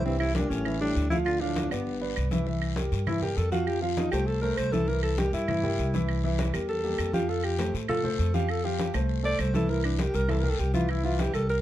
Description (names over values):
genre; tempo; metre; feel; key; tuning
Afro-Cuban jazz; 199 BPM; 4/4; straight; C mixolydian; A4 = 440 Hz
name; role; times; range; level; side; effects
breathy alto saxophone; melody; 0.0-11.6 s; B3 to D5; -30 LUFS; equal; none
breathy trombone; second line; 0.0-2.2 s; G2 to D3; -36 LUFS; left 4 dB; none
dark concert grand piano; accompaniment; 0.0-11.6 s; E3 to F5; -31 LUFS; right 1 dB; none
upright bass; bass; 0.0-11.6 s; G1 to A2; -29 LUFS; equal; none
congas; percussion; 0.1-11.6 s; none; -34 LUFS; left 1 dB; none
guiro; percussion; 0.1-11.6 s; none; -42 LUFS; left 7 dB; none
claves; percussion; 0.2-11.5 s; none; -39 LUFS; right 6 dB; none
room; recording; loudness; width
light reverb; dark, warm production; -25 LUFS; side -13 dB against mid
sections
0.0-2.5 A section; 2.5-11.6 B section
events
alto saxophone solo 2.5-11.6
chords
0.1 C7; 0.7 A5; 1.3 Dm; 1.9 G; 2.5 C7; 3.7 F; 4.9 C7; 7.3 Fadd9; 9.7 C7